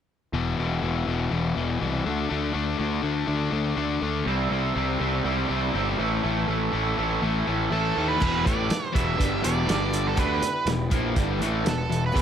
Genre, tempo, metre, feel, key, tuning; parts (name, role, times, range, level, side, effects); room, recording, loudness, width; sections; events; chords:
classic rock; 122 BPM; 4/4; straight; E minor; A4 = 440 Hz
crunchy overdriven guitar; riff; 0.3-12.2 s; E2 to D4; -27 LUFS; left 7 dB
fuzz picked electric bass; bass; 0.3-12.2 s; E1 to D#2; -28 LUFS; right 1 dB; overdrive
raw garage guitar; riff; 4.3-12.2 s; E2 to E4; -30 LUFS; right 16 dB; overdrive, spring reverb
octave-fuzz lead guitar; melody; 7.7-12.2 s; A4 to E5; -29 LUFS; right 4 dB; distortion
picked swing-style acoustic guitar; accompaniment; 8.2-12.2 s; E3 to D5; -35 LUFS; left 2 dB
vintage drum kit; drums; 8.2-12.2 s; crash cymbal, hi-hat, kick drum, snare drum; -27 LUFS; right 1 dB
light reverb, studio ambience; -23 LUFS; side -9 dB against mid
0.3-8.2 A section; 8.2-12.2 B section
0.3 E5; 2.1 D5; 4.3 C; 6.0 A; 8.2 Em; 9.7 G5; 10.2 Em